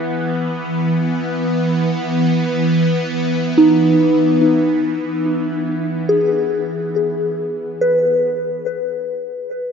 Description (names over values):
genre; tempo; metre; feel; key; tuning
ambient; free time; none; none; E major; A4 = 440 Hz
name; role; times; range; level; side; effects
soft synth bell; arpeggios; 0.0-9.7 s; D#4 to B4; -16 LUFS; equal; chorus, phaser, ping-pong delay
bowed-like drone; drone; 0.0-7.9 s; E3 to B3; -18 LUFS; equal; built-in reverb, phaser
room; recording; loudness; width
wet lush hall reverb, RT60 2.9 s; dreamy mix soaked in reverb, nothing above 7.6 kHz; -15 LUFS; side -6 dB against mid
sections
0.0-7.8 A section; 7.8-9.7 B section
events
fade-in on synth bell 0.0-7.8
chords
0.0 E; 7.8 E (rootless)